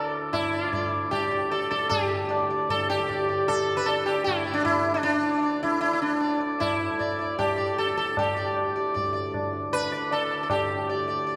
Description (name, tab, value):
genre	indian classical, Hindustani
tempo	154 BPM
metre	4/4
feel	straight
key	D raga durga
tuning	A4 = 440 Hz
part	sitar	melody	0.0-11.4 s	D4 to D5	-27 LUFS	equal	none
part	pedal harmonium	drone	0.0-11.4 s	D2 to A2	-39 LUFS	equal	none
part	tabla	percussion	0.3-10.6 s	none	-33 LUFS	equal	none
room	wet concert hall reverb, RT60 2.2 s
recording	recorded in a church or concert hall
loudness	-26 LUFS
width	mono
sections	0.0-1.9 A section; 1.9-11.4 B section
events	none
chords	none